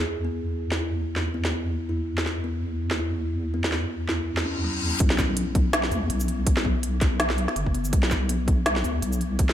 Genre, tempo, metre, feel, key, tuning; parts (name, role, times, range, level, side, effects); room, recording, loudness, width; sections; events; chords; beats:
half-time drum and bass; 164 BPM; 4/4; swing 56% on 16ths, half-time; A4 = 440 Hz
deep soft wobble bass; bass; 0.0-9.5 s; F#1 to E2; -27 LUFS; equal; chorus
kalimba; arpeggios; 0.2-9.5 s; F#3 to E4; -32 LUFS; left 3 dB; digital delay
organic electronic drum kit; drums; 0.7-9.5 s; hi-hat, shaker, snare drum; -27 LUFS; equal
reverse cymbal and impact; sound effects; 4.4-6.5 s; -33 LUFS; left 2 dB
electronic kick drum; drums; 5.0-9.5 s; -22 LUFS; equal
digital ambience; -23 LUFS; side -11 dB against mid
0.0-5.0 A section; 5.0-9.5 B section
reverse cymbal 4.4-5.0; drop 5.0-9.5; impact 5.0-6.5
0.0 E5; 5.0 N.C.
0.25 | 0.61 0.98 1.34 1.71 | 2.08 2.44 2.81 3.17 | 3.54 3.90 4.27 4.64 | 5.00 5.37 5.73 6.10 | 6.47 6.83 7.20 7.56 | 7.93 8.29 8.66 9.03 | 9.39